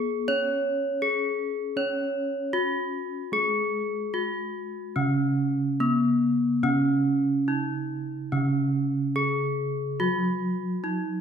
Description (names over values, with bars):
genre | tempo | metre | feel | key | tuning
gamelan | 71-84 BPM | 4/4 | straight | Db slendro | A4 = 440 Hz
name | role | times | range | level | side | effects
gamelan-type bronze metallophone | melody | 0.0-11.2 s | Cb4-45c to Db5 | -25 LUFS | equal | none
gamelan-type bronze metallophone | accompaniment | 0.0-11.2 s | Db3 to Db4 | -30 LUFS | right 2 dB | none
room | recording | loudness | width
wet large studio reverb, RT60 1.4 s | band playing live in one room | -24 LUFS | side -7 dB against mid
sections
0.0-5.0 A section; 5.0-11.2 B section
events
none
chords
none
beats
0.28 1.01 | 1.76 2.53 3.32 4.12 | 4.96 5.80 6.64 7.48 | 8.32 9.16 10.00 10.84